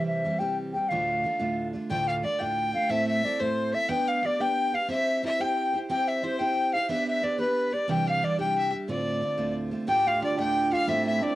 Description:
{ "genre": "celtic folk", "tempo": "120 BPM (dotted quarters)", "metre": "6/8", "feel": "straight", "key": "D dorian", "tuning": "A4 = 440 Hz", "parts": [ { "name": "bright baroque flute", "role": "melody", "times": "0.0-11.4 s", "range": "B4 to G5", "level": "-26 LUFS", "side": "left 1 dB", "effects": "cassette tape" }, { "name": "picked steel-string acoustic guitar", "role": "accompaniment", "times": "0.0-11.4 s", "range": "D2 to C5", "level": "-30 LUFS", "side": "right 2 dB", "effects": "none" }, { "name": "clear fiddle", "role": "second line", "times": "1.9-11.4 s", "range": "B4 to G5", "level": "-32 LUFS", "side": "left 1 dB", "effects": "none" }, { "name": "cimbalom", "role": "second line", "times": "9.9-11.4 s", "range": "D4 to G4", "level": "-29 LUFS", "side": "right 2 dB", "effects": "none" } ], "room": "moderate small room ambience, RT60 0.5 s", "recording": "home recording on cassette", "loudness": "-24 LUFS", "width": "side -15 dB against mid", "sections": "0.0-1.9 A section; 1.9-9.9 B section; 9.9-11.4 B section", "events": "none", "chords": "0.0 C; 0.9 Dm; 2.9 Am; 3.9 G/B; 4.9 C; 6.9 G/B; 7.9 Cadd9; 8.9 Dm7; 9.9 Dm", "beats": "0.40 | 0.90 1.40 | 1.90 2.40 | 2.90 3.40 | 3.90 4.40 | 4.90 5.39 | 5.89 6.39 | 6.89 7.39 | 7.89 8.39 | 8.89 9.39 | 9.89 10.39 | 10.89" }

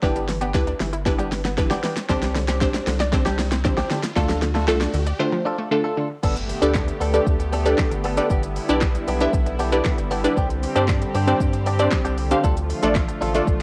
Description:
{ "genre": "dance-pop", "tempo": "116 BPM", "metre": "4/4", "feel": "straight", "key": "C major", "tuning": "A4 = 440 Hz", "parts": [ { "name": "wavetable chord stab", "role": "accompaniment", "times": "0.0-13.6 s", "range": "A3 to F5", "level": "-25 LUFS", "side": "equal", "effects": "sidechain pumping, cassette tape" }, { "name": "unison pluck", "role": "arpeggios", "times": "0.0-6.1 s", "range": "D3 to D5", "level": "-32 LUFS", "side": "equal", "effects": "sidechain pumping, cassette tape, analog delay" }, { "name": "direct-recorded clean electric guitar", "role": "riff", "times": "0.0-13.6 s", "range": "B3 to A4", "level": "-31 LUFS", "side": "equal", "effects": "lush chorus, cassette tape" }, { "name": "round analog bass", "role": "bass", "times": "0.0-13.6 s", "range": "G1 to G2", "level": "-28 LUFS", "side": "equal", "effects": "sidechain pumping" }, { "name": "deep house drum kit", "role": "drums", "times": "0.0-13.6 s", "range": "crash cymbal, handclaps, hi-hat, kick drum, shaker, snare drum", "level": "-26 LUFS", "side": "equal", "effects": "cassette tape" }, { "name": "riser and impact", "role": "sound effects", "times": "1.0-8.3 s", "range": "none", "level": "-40 LUFS", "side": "equal", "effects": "none" }, { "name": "supersaw pad", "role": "sustained chords", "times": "6.2-13.6 s", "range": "D3 to G4", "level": "-31 LUFS", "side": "equal", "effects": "sidechain pumping, cassette tape" } ], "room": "light reverb, digital ambience", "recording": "home recording on cassette", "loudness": "-21 LUFS", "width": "mono", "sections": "0.0-6.2 A section; 6.2-13.6 B section", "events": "build-up 0.0-6.2; drum fill 0.0-5.2; drop 6.2-13.6; impact 6.2-8.3", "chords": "0.0 Em7/G; 2.1 Csus2; 4.2 Dm; 6.2 Gadd9; 8.3 Em7/G; 10.4 Csus2; 12.4 Dm", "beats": "| 0.03 0.54 1.06 1.58 | 2.10 2.61 3.13 3.65 | 4.17 4.68 5.20 5.72 | 6.23 6.75 7.27 7.79 | 8.30 8.82 9.34 9.86 | 10.37 10.89 11.41 11.92 | 12.44 12.96 13.48" }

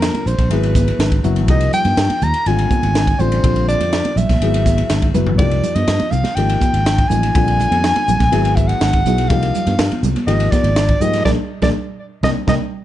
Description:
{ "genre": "electric jazz fusion", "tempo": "123 BPM", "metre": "4/4", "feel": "straight", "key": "C minor", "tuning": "A4 = 439 Hz", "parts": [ { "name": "mellow soprano saxophone", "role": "melody", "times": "0.0-12.5 s", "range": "Bb4 to Bb5", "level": "-20 LUFS", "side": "equal", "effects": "none" }, { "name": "dark baby grand piano", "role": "accompaniment", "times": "0.0-12.6 s", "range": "D3 to B4", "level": "-22 LUFS", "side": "left 6 dB", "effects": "none" }, { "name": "sustaining fretless electric bass", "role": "bass", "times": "0.0-12.6 s", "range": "F#1 to Ab2", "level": "-18 LUFS", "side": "equal", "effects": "none" }, { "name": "crisp fusion drum kit", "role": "drums", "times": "0.0-12.6 s", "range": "hi-hat, kick drum, ride cymbal, snare drum, toms", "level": "-20 LUFS", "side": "equal", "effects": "none" }, { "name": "congas", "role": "percussion", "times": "0.1-12.6 s", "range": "none", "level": "-24 LUFS", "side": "right 4 dB", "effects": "none" } ], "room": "moderate studio reverb, RT60 0.8 s", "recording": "dark, warm production, nothing above 10.3 kHz", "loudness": "-13 LUFS", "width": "side -13 dB against mid", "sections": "0.0-12.8 A section", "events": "drum fill 5.2, 12.2-12.8; band accent 11.3-12.8", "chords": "0.0 Bb69; 0.5 F#9sus4; 1.5 Cm7; 2.5 Abmaj7; 3.4 Bb69; 4.4 F#9sus4; 5.4 Cm7; 6.4 Absus2; 7.3 Bb13; 8.3 Eadd9/G#; 9.3 Cm7; 10.3 Absus2; 11.3 Bb7; 12.2 C7(no3)", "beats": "0.01 0.51 0.99 | 1.48 1.97 2.46 2.95 | 3.44 3.93 4.42 4.91 | 5.39 5.88 6.37 6.86 | 7.35 7.84 8.33 8.82 | 9.30 9.79 10.28 10.77 | 11.26 11.75 12.23" }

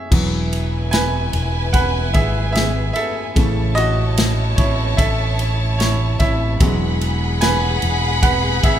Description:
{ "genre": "pop ballad", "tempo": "74 BPM", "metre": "4/4", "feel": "straight", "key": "E major", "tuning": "A4 = 440 Hz", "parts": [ { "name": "bright upright piano", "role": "accompaniment", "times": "0.0-8.8 s", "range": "C#3 to G#5", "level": "-21 LUFS", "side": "right 2 dB", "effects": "none" }, { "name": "warm symphonic violin section", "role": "second line", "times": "0.1-8.8 s", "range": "E4 to B5", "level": "-24 LUFS", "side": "left 1 dB", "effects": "none" }, { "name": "fretless electric bass", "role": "bass", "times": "0.1-8.8 s", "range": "E1 to A1", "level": "-20 LUFS", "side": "equal", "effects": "none" }, { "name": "natural country drum kit", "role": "drums", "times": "0.1-8.8 s", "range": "crash cymbal, kick drum, ride cymbal, snare drum", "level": "-19 LUFS", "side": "equal", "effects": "none" } ], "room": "moderate recital hall reverb, RT60 1.7 s", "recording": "recorded in a church or concert hall", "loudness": "-15 LUFS", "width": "side -10 dB against mid", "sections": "0.1-8.8 A section", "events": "upright piano solo 0.1-8.8", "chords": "0.1 Eadd9; 3.4 A; 6.6 Eadd9", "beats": "| 0.12 0.93 1.74 2.55 | 3.36 4.17 4.98 5.79 | 6.61 7.42 8.23" }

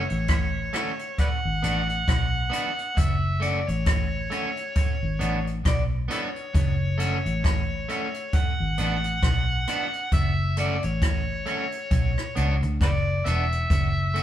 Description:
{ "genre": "roots reggae", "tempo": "67 BPM", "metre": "4/4", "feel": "swing 57% on 16ths", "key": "F# minor", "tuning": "A4 = 440 Hz", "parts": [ { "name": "overdriven harmonica", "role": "melody", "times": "0.0-14.2 s", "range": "E4 to F#5", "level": "-29 LUFS", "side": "equal", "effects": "none" }, { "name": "electric guitar at the edge of break-up", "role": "accompaniment", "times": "0.0-14.2 s", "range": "A3 to F#4", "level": "-31 LUFS", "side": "right 1 dB", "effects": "tape echo" }, { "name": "vintage muted fingered electric bass", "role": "bass", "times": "0.0-14.2 s", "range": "E1 to D2", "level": "-26 LUFS", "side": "equal", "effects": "none" }, { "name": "jazz brush drum kit", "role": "drums", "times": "0.1-14.2 s", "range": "hi-hat, kick drum, rim click", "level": "-25 LUFS", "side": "equal", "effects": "none" } ], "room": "moderate stone room reverb, RT60 1.0 s", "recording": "band playing live in one room", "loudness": "-22 LUFS", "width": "side -11 dB against mid", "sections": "0.0-14.2 A section", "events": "none", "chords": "0.0 F#m; 1.2 Bm; 3.0 F#m; 4.8 Bm; 6.5 F#m; 8.3 Bm; 10.1 F#m; 11.9 Bm; 13.7 F#m", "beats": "0.29 1.18 2.08 | 2.97 3.86 4.76 5.65 | 6.54 7.44 8.33 9.23 | 10.12 11.02 11.91 12.81 | 13.70" }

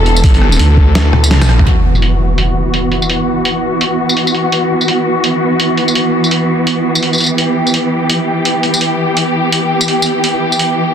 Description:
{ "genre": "half-time drum and bass", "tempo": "168 BPM", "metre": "4/4", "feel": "swing 59% on 16ths, half-time", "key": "E minor", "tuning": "A4 = 441 Hz", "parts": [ { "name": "rich symphonic string section", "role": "sustained chords", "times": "0.0-10.9 s", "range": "E3 to A4", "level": "-13 LUFS", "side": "equal", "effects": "sidechain pumping, low-pass filter" }, { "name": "phased detuned saw bass", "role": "bass", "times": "0.0-1.7 s", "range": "E1 to D2", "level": "-9 LUFS", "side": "equal", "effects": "phaser" }, { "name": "boom bap sampler-style drum kit", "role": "drums", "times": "0.1-10.7 s", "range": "hi-hat, rim click, snare drum, tambourine, toms", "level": "-15 LUFS", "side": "equal", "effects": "low-pass filter on hats, low-pass filter on snare, low-pass filter on perc, low-pass filter on toms, low-pass filter on room" }, { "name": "electronic kick drum", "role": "drums", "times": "0.2-0.9 s", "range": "none", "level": "-10 LUFS", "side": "equal", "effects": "none" }, { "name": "impact", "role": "sound effects", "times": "1.7-3.1 s", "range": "none", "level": "-15 LUFS", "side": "equal", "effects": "none" } ], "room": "moderate echo chamber reverb, RT60 1.5 s", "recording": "dense, heavily limited modern master", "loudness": "-10 LUFS", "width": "side -8 dB against mid", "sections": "0.0-1.7 A section; 1.7-10.9 B section", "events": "drop 0.0-1.7; drum fill 1.1-1.7; band accent 1.3; impact 1.7-3.1; filter sweep on string section 1.7-10.9", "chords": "0.0 Em", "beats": "| 0.24 0.59 0.95 1.31 | 1.67 2.02 2.38 2.74 | 3.10 3.45 3.81 4.17 | 4.52 4.88 5.24 5.59 | 5.95 6.31 6.67 7.02 | 7.38 7.74 8.10 8.45 | 8.81 9.17 9.52 9.88 | 10.24 10.60" }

